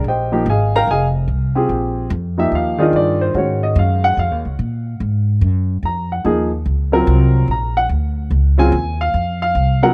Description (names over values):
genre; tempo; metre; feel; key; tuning
modal jazz; 145 BPM; 4/4; swing 66% on 8ths; unclear; A4 = 440 Hz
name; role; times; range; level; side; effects
warm baby grand piano; accompaniment; 0.0-9.9 s; Db3 to Bb5; -19 LUFS; equal; none
upright bass; bass; 0.0-9.9 s; F1 to Bb2; -20 LUFS; equal; none
room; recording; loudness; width
studio ambience; dry, close 1970s-style studio recording; -17 LUFS; mono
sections
0.0-9.9 A section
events
none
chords
0.0 Bb13sus4; 3.4 Ab13sus4